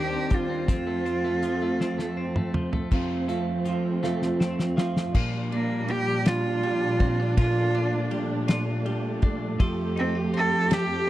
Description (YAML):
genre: six-eight pop ballad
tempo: 54 BPM (dotted quarters)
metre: 6/8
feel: straight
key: Bb major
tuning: A4 = 441 Hz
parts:
  - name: rich cello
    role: melody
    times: 0.0-11.1 s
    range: Bb3 to A4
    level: -27 LUFS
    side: right 2 dB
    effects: none
  - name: twelve-string electric guitar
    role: accompaniment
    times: 0.0-11.1 s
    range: F2 to A4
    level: -29 LUFS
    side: left 1 dB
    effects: none
  - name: warm studio string section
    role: sustained chords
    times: 0.0-11.1 s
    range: Eb2 to G4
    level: -30 LUFS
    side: right 2 dB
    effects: none
  - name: damped 70s drum kit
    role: drums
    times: 0.3-10.9 s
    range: crash cymbal, hi-hat, kick drum, ride cymbal, snare drum, toms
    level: -24 LUFS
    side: equal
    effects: none
  - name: fingerpicked steel-string acoustic guitar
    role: arpeggios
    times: 2.9-5.2 s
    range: F2 to F4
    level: -30 LUFS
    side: right 2 dB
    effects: none
room: small room ambience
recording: dry, close 1970s-style studio recording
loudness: -23 LUFS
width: side -14 dB against mid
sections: 0.0-2.9 A section; 2.9-5.1 B section; 5.1-11.1 C section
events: drum fill 1.8-2.9, 4.0-5.1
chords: 0.0 Cmadd9/Eb; 0.7 F; 5.1 Bb6; 9.6 Fadd9